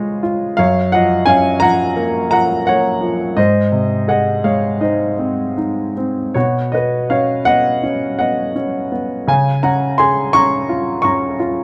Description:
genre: classical, lyrical solo piano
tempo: 76-88 BPM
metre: 4/4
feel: rubato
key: Db major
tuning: A4 = 438 Hz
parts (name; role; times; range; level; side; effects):
- warm grand piano; solo; 0.0-11.6 s; Gb2 to Db6; -16 LUFS; equal; none
room: light reverb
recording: dark, warm production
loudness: -16 LUFS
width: mono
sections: 0.0-11.6 A section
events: none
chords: 0.0 Db; 0.6 Gbmaj7; 3.4 Ab; 6.4 Cbsus2; 9.3 Db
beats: | 0.58 1.28 1.97 2.66 | 3.37 4.08 4.81 5.58 | 6.35 7.10 7.83 8.56 | 9.28 9.99 10.69 11.40

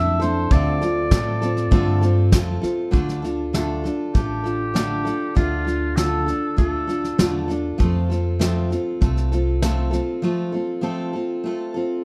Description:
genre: honky-tonk and classic country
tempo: 99 BPM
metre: 4/4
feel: straight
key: D minor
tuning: A4 = 440 Hz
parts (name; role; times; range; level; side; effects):
- warm oboe; melody; 0.0-7.5 s; F4 to E5; -29 LUFS; equal; none
- picked steel-string acoustic guitar; accompaniment; 0.0-12.0 s; D3 to A4; -25 LUFS; equal; none
- upright bass; bass; 0.0-10.0 s; A1 to A2; -26 LUFS; equal; none
- soft brush drum kit; drums; 0.2-10.0 s; hi-hat, kick drum, snare drum; -24 LUFS; equal; none
room: light reverb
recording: dark, warm production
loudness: -21 LUFS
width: mono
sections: 0.0-2.9 A section; 2.9-12.0 B section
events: break 10.2-12.0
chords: 0.0 Dmadd9; 0.5 Dm7; 2.9 Dm; 7.8 F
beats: | 0.51 1.11 1.72 2.33 | 2.94 3.54 4.15 4.76 | 5.37 5.97 6.58 7.19 | 7.80 8.41 9.02 9.62 | 10.23 10.84 11.45

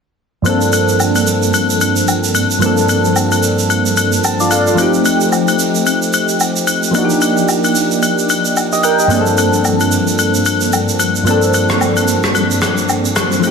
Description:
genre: amapiano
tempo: 111 BPM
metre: 4/4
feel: swing 58% on 16ths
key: G minor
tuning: A4 = 441 Hz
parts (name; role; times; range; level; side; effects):
- soft electric-piano-like synth keys; accompaniment; 0.4-13.5 s; G2 to A5; -13 LUFS; equal; chorus, phaser
- shaker and rim click; drums; 0.5-13.5 s; none; -19 LUFS; right 4 dB; none
- agogo bells and woodblock; percussion; 0.5-13.5 s; none; -18 LUFS; left 6 dB; none
room: moderate lush hall reverb, RT60 2.5 s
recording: dense, heavily limited modern master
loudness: -11 LUFS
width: side -5 dB against mid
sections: 0.5-13.5 A section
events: synth keys fill 4.0-4.8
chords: 0.5 Gm11; 4.8 F9; 6.9 Ebmaj7; 9.1 Gm11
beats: | 0.46 1.00 1.54 2.08 | 2.62 3.16 3.70 4.24 | 4.78 5.32 5.87 6.41 | 6.95 7.49 8.03 8.57 | 9.11 9.65 10.19 10.73 | 11.27 11.81 12.35 12.89 | 13.43

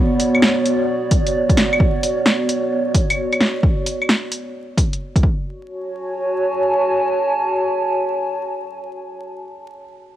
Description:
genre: future garage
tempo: 131 BPM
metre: 4/4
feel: swing 67% on 16ths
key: F# minor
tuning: A4 = 441 Hz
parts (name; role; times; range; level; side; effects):
- warbly tape-like pad; sustained chords; 0.0-9.4 s; B3 to A5; -20 LUFS; right 1 dB; chorus, built-in reverb, vintage 12-bit sampler grit, sidechain pumping, cassette tape
- deep house drum kit; drums; 0.2-5.2 s; claves, hi-hat, snare drum; -17 LUFS; equal; overdrive, cassette tape
- electronic kick drum; drums; 1.1-5.4 s; none; -17 LUFS; equal; overdrive, cassette tape
room: light reverb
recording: home recording on cassette, vinyl crackle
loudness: -16 LUFS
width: side -12 dB against mid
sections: 0.0-5.5 A section; 5.5-9.1 B section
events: none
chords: 0.0 Bm; 5.2 F#5; 5.5 F#m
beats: 0.42 0.88 1.34 | 1.80 2.26 2.71 3.17 | 3.63 4.09 4.55 5.00 | 5.46 5.92 6.38 6.84 | 7.29 7.75 8.21 8.67

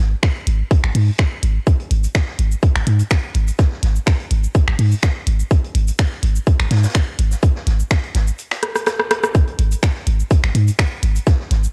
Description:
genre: minimal techno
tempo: 125 BPM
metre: 4/4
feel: straight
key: unclear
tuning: A4 = 441 Hz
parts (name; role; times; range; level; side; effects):
- punchy sub bass; bass; 0.0-11.7 s; G#1 to G#2; -18 LUFS; equal; tube saturation, sidechain pumping
- electronic kick drum; drums; 0.2-11.4 s; none; -18 LUFS; equal; cassette tape
- minimal click drum kit; drums; 0.2-11.7 s; finger snaps, hi-hat, rim click, shaker; -24 LUFS; equal; overdrive, cassette tape
- vintage drum kit; drums; 0.2-11.6 s; hi-hat, snare drum; -38 LUFS; equal; sidechain pumping on hats, high-pass filter on hats, cassette tape, high-pass filter on snare, high-pass filter on room
room: little or no reverb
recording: home recording on cassette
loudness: -18 LUFS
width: mono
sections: 0.0-9.3 A section; 9.3-11.7 B section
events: drum fill 8.6-9.3; drop 9.3-11.7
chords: none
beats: 0.23 0.71 1.19 | 1.67 2.15 2.63 3.11 | 3.59 4.07 4.55 5.03 | 5.51 5.99 6.47 6.95 | 7.43 7.91 8.39 8.87 | 9.35 9.83 10.31 10.79 | 11.27

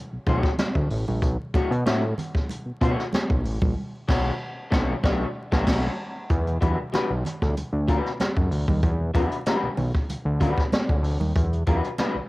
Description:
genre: funk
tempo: 95 BPM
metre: 4/4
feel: straight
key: unclear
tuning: A4 = 440 Hz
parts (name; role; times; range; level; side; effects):
- fat analog bass; bass; 0.1-12.2 s; A1 to B2; -24 LUFS; equal; none
- electric guitar through a small old amp; accompaniment; 0.3-12.1 s; G3 to C#5; -28 LUFS; left 2 dB; lush chorus, cassette tape
- jazz brush drum kit; drums; 0.3-12.1 s; crash cymbal, hi-hat, kick drum, snare drum; -25 LUFS; equal; cassette tape
- congas; percussion; 0.3-12.1 s; none; -33 LUFS; right 3 dB; none
room: light reverb, studio reverb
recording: home recording on cassette, vinyl crackle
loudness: -22 LUFS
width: side -20 dB against mid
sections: 0.0-6.3 A section; 6.3-12.3 B section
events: band accent 3.8-6.3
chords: 0.0 Bm9; 6.3 Em9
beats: 0.59 | 1.23 1.86 2.50 3.13 | 3.77 4.40 5.04 5.67 | 6.30 6.93 7.57 8.20 | 8.83 9.46 10.10 10.72 | 11.36 11.98

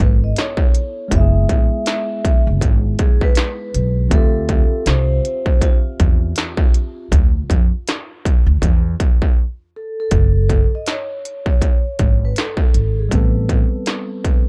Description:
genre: hip hop, jazz-hop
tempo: 80 BPM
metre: 4/4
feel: swing 59% on 16ths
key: unclear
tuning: A4 = 442 Hz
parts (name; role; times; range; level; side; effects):
- vibraphone with soft mallets; melody; 0.0-14.5 s; F4 to E5; -28 LUFS; equal; none
- tine electric piano; accompaniment; 0.0-7.1, 13.1-14.5 s; E3 to E5; -29 LUFS; equal; none
- upright bass; bass; 0.0-13.6 s; F#1 to F2; -19 LUFS; equal; none
- industrial drum kit; drums; 0.0-14.5 s; hi-hat, kick drum, snare drum; -18 LUFS; equal; distortion
room: little or no reverb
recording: dark, warm production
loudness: -17 LUFS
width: mono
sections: 0.0-10.1 A section; 10.1-14.5 B section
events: break 9.4-10.1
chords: 0.0 F#m11 (rootless); 4.1 Dm11; 10.1 F#sus2; 13.1 Am9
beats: 0.37 | 1.12 1.87 2.62 3.37 | 4.12 4.87 5.62 6.37 | 7.12 7.87 8.62 9.37 | 10.12 10.87 11.62 12.37 | 13.12 13.87

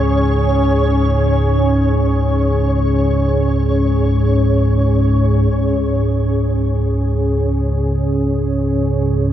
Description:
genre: dark ambient drone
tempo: free time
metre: none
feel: none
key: unclear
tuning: A4 = 440 Hz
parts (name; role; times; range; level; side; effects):
- deep dark ambient pad; sustained chords; 0.0-9.3 s; C#4 to C#5; -18 LUFS; left 1 dB; chorus, built-in reverb
- deep rumbling drone; drone; 0.0-9.3 s; C#2 to G#2; -16 LUFS; right 1 dB; built-in reverb
- flickering grainy texture; texture; 0.0-5.5 s; C#5; -26 LUFS; left 1 dB; built-in reverb
room: wet huge ambient reverb, RT60 7.7 s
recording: none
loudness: -14 LUFS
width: side -11 dB against mid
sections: 0.0-5.5 A section; 5.5-9.3 B section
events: none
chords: 0.0 C#5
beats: free time

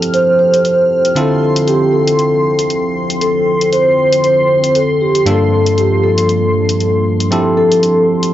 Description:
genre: deep house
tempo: 117 BPM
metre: 4/4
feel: swing 56% on 16ths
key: D minor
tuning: A4 = 440 Hz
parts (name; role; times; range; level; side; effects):
- deep dark ambient pad; sustained chords; 0.0-8.3 s; G2 to G5; -20 LUFS; equal; chorus, built-in reverb
- bell-like tine electric piano; stabs; 0.0-8.3 s; G2 to A4; -16 LUFS; right 1 dB; tape echo
- electronic hi-hat; drums; 0.0-8.3 s; none; -22 LUFS; left 2 dB; overdrive
- analog string pad; texture; 0.0-8.3 s; C6 to F6; -24 LUFS; equal; ensemble chorus
- vibraphone with soft mallets; melody; 0.1-8.1 s; G4 to C5; -13 LUFS; equal; tape echo
room: light reverb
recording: dry, gritty hardware recording, nothing above 7.6 kHz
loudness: -10 LUFS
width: side -12 dB against mid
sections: 0.0-8.3 A section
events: none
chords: 0.0 Fmaj9; 1.2 Dm7; 5.3 Gm9; 7.3 Fmaj9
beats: 0.14 0.65 | 1.16 1.68 2.19 2.70 | 3.21 3.73 4.24 4.75 | 5.26 5.78 6.29 6.80 | 7.32 7.83

